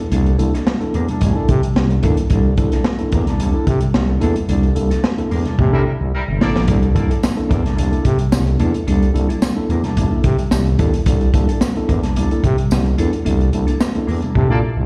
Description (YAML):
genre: funk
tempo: 110 BPM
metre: 4/4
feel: straight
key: C mixolydian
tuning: A4 = 441 Hz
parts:
  - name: mellow electric guitar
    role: accompaniment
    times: 0.0-14.8 s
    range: Bb3 to Bb4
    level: -27 LUFS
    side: equal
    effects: phaser, slapback echo
  - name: mellow tine electric piano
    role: stabs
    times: 0.0-14.9 s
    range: C3 to A4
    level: -25 LUFS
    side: equal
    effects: tape echo
  - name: growling FM bass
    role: bass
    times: 0.1-14.9 s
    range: G1 to C3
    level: -19 LUFS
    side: equal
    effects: none
  - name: crunchy breakbeat drum kit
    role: drums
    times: 0.1-14.5 s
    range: hi-hat, kick drum, snare drum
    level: -21 LUFS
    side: equal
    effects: none
  - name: clear horn section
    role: second line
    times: 5.7-6.6, 14.5-14.6 s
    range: G3 to D5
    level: -30 LUFS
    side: equal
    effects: tape echo, slapback echo
  - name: tambourine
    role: percussion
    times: 7.2-13.9 s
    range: none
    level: -37 LUFS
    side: equal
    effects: none
room: light reverb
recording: live gig heard through the venue's PA, recital hall reverb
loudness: -17 LUFS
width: mono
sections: 0.0-14.9 A section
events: band accent 4.5-6.7, 13.3-14.9; drum fill 5.6-6.7, 14.4-14.9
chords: 0.0 C13